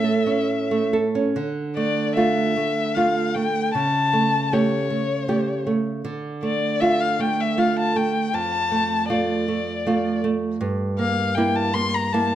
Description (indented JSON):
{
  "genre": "romantic duo for violin and classical guitar",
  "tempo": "78 BPM",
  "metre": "3/4",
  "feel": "uneven beats, rubato",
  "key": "D minor",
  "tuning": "A4 = 442 Hz",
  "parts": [
    { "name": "warm violin", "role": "melody", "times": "0.0-12.3 s", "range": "C#5 to C6", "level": "-24 LUFS", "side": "left 4 dB", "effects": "none" },
    { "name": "nylon-string guitar", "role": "accompaniment", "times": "0.0-12.3 s", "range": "F2 to A4", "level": "-21 LUFS", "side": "right 2 dB", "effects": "none" }
  ],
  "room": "moderate recital hall reverb, RT60 1.2 s",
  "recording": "dark, warm production",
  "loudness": "-20 LUFS",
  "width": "side -11 dB against mid",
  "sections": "0.0-1.4 A section; 1.4-12.3 B section",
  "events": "none",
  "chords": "0.0 A; 1.4 Dm; 3.7 A7/C#; 6.0 Dm; 8.3 Dm/F; 10.6 Edim/G",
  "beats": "0.48 | 1.35 2.16 2.96 | 3.74 4.52 5.29 | 6.05 6.81 7.57 | 8.34 9.11 9.87 | 10.61 11.37 12.14"
}